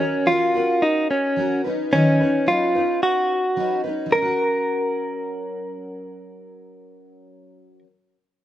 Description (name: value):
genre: acoustic pop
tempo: 109 BPM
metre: 4/4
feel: straight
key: F# major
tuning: A4 = 440 Hz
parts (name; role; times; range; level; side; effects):
- direct-recorded clean electric guitar; melody; 0.0-7.8 s; C#4 to A#4; -20 LUFS; equal; slapback echo
- picked steel-string acoustic guitar; accompaniment; 0.0-7.9 s; D#3 to B4; -25 LUFS; left 1 dB; double-tracked left and right, slapback echo
room: little or no reverb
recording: recorded outdoors, with no room sound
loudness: -18 LUFS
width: side -12 dB against mid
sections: 0.0-4.1 A section; 4.1-6.3 B section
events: none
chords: 0.0 D#m7 (rootless); 1.6 Badd9/D#; 4.1 F#